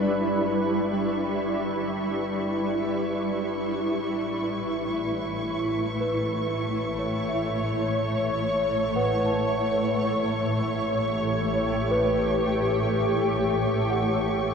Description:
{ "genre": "ambient", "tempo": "61 BPM", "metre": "3/4", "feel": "straight", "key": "unclear", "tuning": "A4 = 440 Hz", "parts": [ { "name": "shimmering ambient pad", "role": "sustained chords", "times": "0.0-14.5 s", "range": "A2 to C#5", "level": "-24 LUFS", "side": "equal", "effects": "chorus, built-in reverb" }, { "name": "celesta", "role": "arpeggios", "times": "0.0-14.5 s", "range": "B4 to A5", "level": "-31 LUFS", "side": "right 1 dB", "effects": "tape echo" }, { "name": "warm studio double bass section", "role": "bass", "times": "0.0-14.5 s", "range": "G1 to A1", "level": "-34 LUFS", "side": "equal", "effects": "none" }, { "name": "dark symphonic violin section", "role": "texture", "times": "0.0-14.5 s", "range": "C#6", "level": "-36 LUFS", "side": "equal", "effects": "none" } ], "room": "wet huge ambient reverb, RT60 7.5 s", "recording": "worn, warbling old tape, cassette tape, warbly pitch drift", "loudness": "-23 LUFS", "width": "side -6 dB against mid", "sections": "0.0-14.5 A section", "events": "fade-in on celesta 0.0-14.5; fade-in on double bass section 0.0-14.5; fade-in on violin section 0.0-14.5", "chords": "0.0 G6; 4.0 F#m7/A; 9.9 A7", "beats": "0.02 | 1.01 2.00 3.00 | 4.00 5.01 6.01 | 6.99 7.98 8.96 | 9.95 10.93 11.91 | 12.90 13.90" }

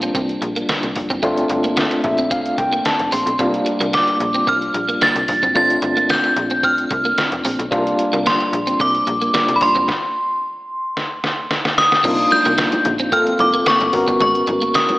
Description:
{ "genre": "early-eighties boogie funk", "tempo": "111 BPM", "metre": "4/4", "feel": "straight", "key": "C dorian", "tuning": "A4 = 440 Hz", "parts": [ { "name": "overdriven tine electric piano", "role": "accompaniment", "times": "0.0-15.0 s", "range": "G3 to C6", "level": "-20 LUFS", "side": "left 1 dB", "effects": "fast tremolo" }, { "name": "clean electric guitar", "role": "riff", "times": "0.0-14.9 s", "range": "Ab3 to C4", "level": "-25 LUFS", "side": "right 2 dB", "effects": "ensemble chorus" }, { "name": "slap-like FM bass", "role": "bass", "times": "0.0-14.8 s", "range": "F1 to C2", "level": "-26 LUFS", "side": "equal", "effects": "none" }, { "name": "detuned 8-bit digital drum machine", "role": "drums", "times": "0.0-15.0 s", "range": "crash cymbal, hi-hat, kick drum, snare drum", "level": "-23 LUFS", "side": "equal", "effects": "none" }, { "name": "metallic FM bell", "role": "melody", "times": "3.9-15.0 s", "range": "B5 to A6", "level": "-17 LUFS", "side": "equal", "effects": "chorus, slapback echo" }, { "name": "congas", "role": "percussion", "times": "12.0-15.0 s", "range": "none", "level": "-30 LUFS", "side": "equal", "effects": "none" } ], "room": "wet lush hall reverb, RT60 1.6 s", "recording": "big arena sound, AM radio sound", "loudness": "-15 LUFS", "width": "side -19 dB against mid", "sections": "0.0-12.0 A section; 12.0-15.0 B section", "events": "tine electric piano fill 1.8-3.4; stop 9.9-12.0; drum fill 11.0-12.0", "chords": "0.0 C9sus4; 1.2 G9sus4; 3.4 C9sus4; 5.6 G9sus4; 7.7 C9sus4; 9.9 N.C.; 12.0 Cm11; 13.1 Gm11; 13.9 Abm11", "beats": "0.15 0.69 | 1.23 1.77 2.31 2.85 | 3.39 3.93 4.47 5.01 | 5.56 6.10 6.64 7.18 | 7.72 8.26 8.80 9.34 | 9.88 10.42 10.96 11.50 | 12.04 12.58 13.12 13.66 | 14.20 14.74" }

